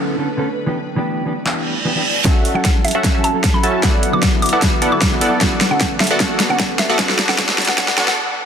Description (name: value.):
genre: future bass.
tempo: 152 BPM.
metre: 4/4.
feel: half-time.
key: unclear.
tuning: A4 = 439 Hz.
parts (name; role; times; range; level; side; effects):
mellow electric guitar; accompaniment; 0.0-8.1 s; D3 to A4; -23 LUFS; right 1 dB; sidechain pumping, dub echo.
ethereal airy pad; sustained chords; 0.0-8.5 s; D3 to D5; -27 LUFS; left 1 dB; ensemble chorus, built-in reverb, phaser, vintage 12-bit sampler grit, sidechain pumping.
big-room dance drum kit; drums; 1.5-8.2 s; handclaps, hi-hat, snare drum; -18 LUFS; equal; none.
reverse cymbal and riser; sound effects; 1.6-8.2 s; none; -26 LUFS; right 2 dB; none.
supersaw stab; riff; 2.3-8.2 s; B3 to A5; -19 LUFS; equal; sidechain pumping, low-pass filter.
electronic kick drum; drums; 2.3-7.9 s; none; -18 LUFS; equal; none.
mallet-like synth pluck; melody; 2.6-8.1 s; E5 to D6; -23 LUFS; equal; chorus, sidechain pumping, dub echo.
room: moderate lush hall reverb, RT60 1.9 s.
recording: dense, heavily limited modern master, high-pass filter.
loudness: -14 LUFS.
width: side -7 dB against mid.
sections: 0.0-2.3 A section; 2.3-8.5 B section.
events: reverse cymbal 1.6-2.3; build-up 2.3-8.5; drum fill 2.3-8.2; filter sweep on supersaw synth 2.3-8.5; filter sweep 2.3-8.5; break 8.2.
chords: 0.0 Bm7/D; 0.7 Em7; 2.3 F#m7; 3.8 D69; 5.4 Bm7/D; 7.0 Em7.